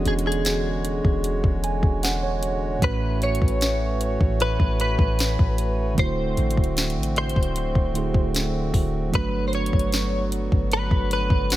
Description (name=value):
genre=contemporary R&B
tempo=76 BPM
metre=4/4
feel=straight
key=A major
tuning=A4 = 440 Hz
part: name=direct-recorded clean electric guitar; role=melody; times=0.0-11.6 s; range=F#4 to C#5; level=-28 LUFS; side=equal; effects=analog chorus, tape echo
part: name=mellow tine electric piano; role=accompaniment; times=0.0-11.6 s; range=A2 to G#5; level=-28 LUFS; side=right 4 dB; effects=none
part: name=pedal harmonium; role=sustained chords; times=0.0-11.6 s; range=D3 to C#5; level=-31 LUFS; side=left 1 dB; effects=none
part: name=warm 808-style bass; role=bass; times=0.0-11.6 s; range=D1 to A1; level=-26 LUFS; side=equal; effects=none
part: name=smooth R&B drum kit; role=drums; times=0.1-11.6 s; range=hi-hat, kick drum, snare drum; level=-23 LUFS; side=equal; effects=none
room=digital ambience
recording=none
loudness=-20 LUFS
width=side -15 dB against mid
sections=0.0-11.6 A section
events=tine electric piano fill 1.2-2.8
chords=0.0 E13; 2.8 A6; 6.0 D7; 9.1 Gmaj7